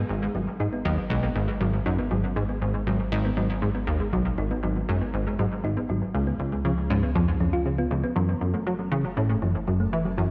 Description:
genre	ambient, sequencer-driven space music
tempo	119 BPM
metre	4/4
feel	straight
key	G# minor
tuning	A4 = 440 Hz
part	plucky analog bass	riff	0.0-10.3 s	G#1 to F#3	-28 LUFS	equal	subtle chorus, cassette tape, tape echo
part	warm sub bass	bass	0.0-10.3 s	F#1 to C#2	-35 LUFS	equal	none
part	thumb-piano-like synth pluck	arpeggios	0.2-10.3 s	E3 to E#4	-31 LUFS	equal	chorus, cassette tape, tape echo
part	bubbling stepped-filter texture	texture	8.6-10.3 s	A4 to A5	-56 LUFS	equal	none
room	moderate plate reverb, RT60 3.1 s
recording	worn, warbling old tape, cassette tape, warbly pitch drift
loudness	-26 LUFS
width	mono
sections	0.0-8.2 A section; 8.2-10.3 B section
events	none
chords	0.0 G#m7; 6.1 C#7; 8.2 F#m7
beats	| 0.09 0.60 1.10 1.61 | 2.11 2.61 3.12 3.62 | 4.13 4.63 5.13 5.64 | 6.14 6.65 7.15 7.66 | 8.16 8.66 9.17 9.67 | 10.18

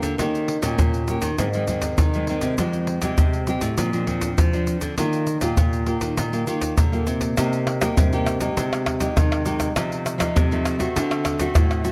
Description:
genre	samba and choro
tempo	100 BPM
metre	4/4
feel	straight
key	Eb major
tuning	A4 = 435 Hz
part	nylon-string guitar	accompaniment	0.0-11.9 s	G2 to G4	-27 LUFS	equal	none
part	nylon-string guitar	bass	0.0-11.9 s	F2 to F3	-28 LUFS	equal	none
part	egg shaker, surdo, pandeiro and tamborim	percussion	0.0-11.9 s	none	-25 LUFS	equal	none
room	light reverb, studio reverb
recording	cassette tape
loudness	-22 LUFS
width	mono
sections	0.0-7.4 A section; 7.4-11.9 B section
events	none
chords	0.2 Eb7; 1.4 Ab; 2.6 Fmadd9; 3.8 Bbadd9; 5.0 Ebadd9; 7.4 Cm7; 8.6 Abmaj7/C; 9.8 F7/C; 11.0 D7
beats	| 0.19 0.79 1.38 1.98 | 2.58 3.18 3.78 4.38 | 4.98 5.58 6.18 6.78 | 7.37 7.97 8.57 9.17 | 9.76 10.36 10.96 11.55

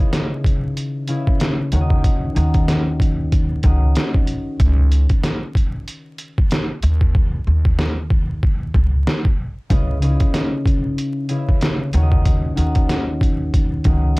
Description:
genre	hip hop, boom-bap hip-hop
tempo	94 BPM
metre	4/4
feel	swing 57% on 16ths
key	unclear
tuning	A4 = 440 Hz
part	concert harp	accompaniment	0.0-14.2 s	C#3 to E5	-23 LUFS	left 1 dB	cassette tape, high-pass filter, low-pass filter, plate reverb
part	trip hop sampler-style drum kit	drums	0.1-14.2 s	hi-hat, kick drum, snare drum	-18 LUFS	equal	overdrive
part	upright bass	bass	1.7-14.1 s	C#2 to D#2	-18 LUFS	equal	none
room	little or no reverb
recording	dark, warm production, vinyl crackle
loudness	-16 LUFS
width	side -24 dB against mid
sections	0.0-14.2 A section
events	hi-hats muted 7.2-9.7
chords	0.0 C#m7; 1.7 D#m7; 4.6 N.C.; 9.7 C#m7; 11.9 D#m7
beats	0.13 0.77 1.41 | 2.04 2.68 3.32 3.96 | 4.60 5.24 5.87 6.51 | 7.15 7.79 8.43 9.06 | 9.70 10.34 10.98 11.62 | 12.26 12.89 13.53 14.17

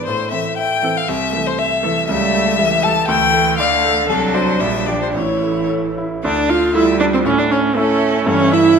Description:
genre	quick classical-period movement for piano quartet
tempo	118 BPM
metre	2/4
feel	rubato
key	D minor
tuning	A4 = 440 Hz
part	rich violin	melody	0.0-8.8 s	A4 to A5	-18 LUFS	left 7 dB	none
part	bright concert grand piano	accompaniment	0.0-8.8 s	A1 to E5	-21 LUFS	right 1 dB	none
part	rich cello	second line	0.3-8.8 s	D3 to C#4	-22 LUFS	right 6 dB	none
part	warm viola	accompaniment	0.3-8.8 s	G3 to F4	-18 LUFS	right 3 dB	none
room	wet scoring stage reverb, RT60 1.8 s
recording	minimal, uncompressed stereo recording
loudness	-14 LUFS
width	side -6 dB against mid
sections	0.0-6.2 A section; 6.2-8.8 B section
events	none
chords	0.1 Am; 1.1 Am/C; 2.1 A7/C#; 3.1 Dm; 4.1 D7/C; 4.6 Gm/Bb; 5.1 A; 6.2 Dm; 7.2 A; 8.3 A7/G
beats	| 0.08 0.59 | 1.09 1.59 | 2.09 2.59 | 3.08 3.59 | 4.09 4.61 | 5.14 5.69 | 6.23 6.74 | 7.25 7.75 | 8.26 8.78

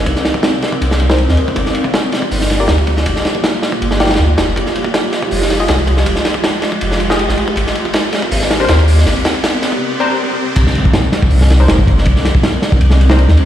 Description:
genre	drum and bass, jungle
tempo	160 BPM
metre	4/4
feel	straight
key	C minor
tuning	A4 = 440 Hz
part	soft dub sub bass	bass	0.0-13.4 s	D1 to Eb2	-12 LUFS	equal	none
part	riser and impact	sound effects	2.3-12.1 s	none	-24 LUFS	equal	none
part	crunchy breakbeat drum kit	drums	0.1-13.5 s	crash cymbal, hi-hat, kick drum, ride cymbal, snare drum	-15 LUFS	equal	high-pass filter on kick, high-pass filter on cymbals, high-pass filter on hats, high-pass filter on snare, high-pass filter on room
part	filtered dub chord stab	stabs	1.1-13.2 s	D4 to Eb5	-21 LUFS	left 3 dB	chorus, cassette tape, dub echo
room	light reverb, studio ambience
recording	played on a big sound system in a bare room, stone room reverb, vinyl crackle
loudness	-11 LUFS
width	side -11 dB against mid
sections	0.0-10.6 A section; 10.6-13.5 B section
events	build-up 0.0-10.6; filter sweep on synth stab 0.0-10.6; riser 2.3-10.6; drop 10.6-13.5; impact 10.6-12.1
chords	0.0 Cm9; 1.6 Gm7; 4.6 Fm9; 7.6 Abmaj9#11; 10.6 Cm9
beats	| 0.06 0.44 0.81 1.19 | 1.56 1.94 2.31 2.69 | 3.06 3.44 3.81 4.19 | 4.56 4.94 5.31 5.69 | 6.06 6.44 6.81 7.19 | 7.56 7.94 8.31 8.69 | 9.06 9.44 9.81 10.19 | 10.56 10.94 11.31 11.69 | 12.06 12.44 12.81 13.19

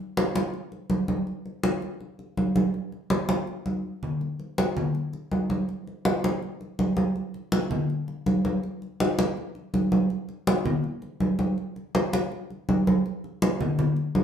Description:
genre	latin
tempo	163 BPM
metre	4/4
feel	straight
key	none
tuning	none
part	congas	percussion	0.2-14.2 s	none	-24 LUFS	equal	none
room	wet studio reverb, RT60 0.8 s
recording	band playing live in one room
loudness	-24 LUFS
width	side -8 dB against mid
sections	0.0-4.2 A section; 4.2-14.2 B section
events	drum fill 3.7-4.2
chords	none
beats	0.17 0.54 0.91 | 1.27 1.64 2.01 2.38 | 2.74 3.11 3.48 3.85 | 4.22 4.58 4.95 5.32 | 5.69 6.06 6.42 6.79 | 7.16 7.53 7.90 8.26 | 8.63 9.00 9.37 9.74 | 10.10 10.47 10.84 11.21 | 11.58 11.95 12.31 12.68 | 13.05 13.42 13.79 14.15

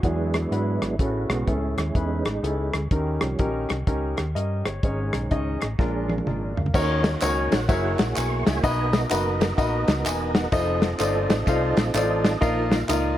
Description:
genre	uptempo gospel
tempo	126 BPM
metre	4/4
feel	swing 64% on 8ths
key	Eb minor from 6.7 s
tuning	A4 = 436 Hz
part	warm grand piano	accompaniment	0.0-13.2 s	G#2 to Ab5	-26 LUFS	left 1 dB	tape echo
part	tonewheel organ	sustained chords	0.0-13.2 s	D#3 to Db6	-29 LUFS	right 3 dB	slow rotary speaker, chorus vibrato
part	fingered electric bass	bass	0.0-13.1 s	Fb1 to G#2	-28 LUFS	equal	none
part	warm soul drum kit	drums	0.0-13.0 s	crash cymbal, hi-hat, kick drum, ride cymbal, rim click, snare drum, toms	-25 LUFS	equal	tape echo
part	tambourine and handclaps	percussion	6.7-13.0 s	none	-35 LUFS	equal	tape echo
room	light reverb, small room ambience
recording	echo-heavy mix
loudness	-21 LUFS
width	side -12 dB against mid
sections	0.0-6.7 A section; 6.7-13.2 B section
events	tonewheel organ solo 0.0-6.7; drum fill 5.8-6.7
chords	0.0 E9; 1.0 Amaj7; 2.9 D#7; 4.8 G#sus4; 5.8 A#7; 6.7 Ebm7; 7.7 Gb9; 8.6 Bmaj7; 10.5 F7; 12.4 Bbsus4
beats	0.04 0.52 | 1.00 1.48 1.96 2.44 | 2.92 3.40 3.87 4.35 | 4.83 5.31 5.79 6.26 | 6.74 7.22 7.69 8.17 | 8.64 9.11 9.59 10.06 | 10.53 11.00 11.48 11.95 | 12.42 12.90

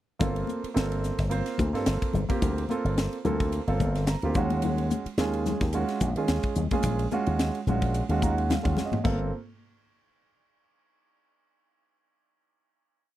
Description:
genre	electric jazz fusion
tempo	109 BPM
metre	4/4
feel	swing 55% on 16ths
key	unclear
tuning	A4 = 441 Hz
part	warm concert grand piano	accompaniment	0.2-9.3 s	Ab3 to Bb5	-30 LUFS	right 4 dB	none
part	slap bass with an envelope filter	bass	0.2-9.3 s	G1 to Eb3	-28 LUFS	equal	none
part	crisp fusion drum kit	drums	0.2-9.2 s	crash cymbal, hi-hat, kick drum, ride cymbal, snare drum, toms	-30 LUFS	equal	none
part	congas	percussion	0.2-9.3 s	none	-33 LUFS	left 7 dB	none
room	light reverb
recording	dry, close 1970s-style studio recording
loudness	-24 LUFS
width	side -14 dB against mid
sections	0.2-9.0 groove; 9.0-11.2 final chord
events	grand piano fill 3.8-4.6, 7.9-9.0; drum fill 8.8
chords	0.2 Gm11; 4.4 Ebm11; 9.0 Gm11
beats	| 0.20 0.76 1.31 1.86 | 2.42 2.97 3.52 4.08 | 4.63 5.18 5.73 6.29 | 6.84 7.39 7.94 8.49 | 9.04

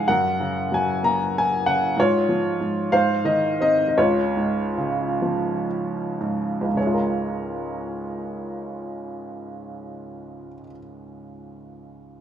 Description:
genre	classical, lyrical solo piano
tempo	34-65 BPM (dotted quarters)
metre	6/8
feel	rubato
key	Db major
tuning	A4 = 441 Hz
part	clear upright piano	solo	0.0-12.2 s	Db2 to Bb5	-21 LUFS	equal	none
room	moderate recital hall reverb, RT60 1.5 s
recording	minimal, uncompressed stereo recording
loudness	-20 LUFS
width	side -9 dB against mid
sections	0.0-6.8 A section; 6.8-12.2 B section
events	slowing down 2.0-6.8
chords	0.1 Gb; 2.0 Db/Ab; 2.9 Ab; 4.0 Db; 6.8 Db6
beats	| 0.08 1.03 | 1.97 2.93 | 3.98 5.23 | 6.77 8.45 | 10.08 11.75

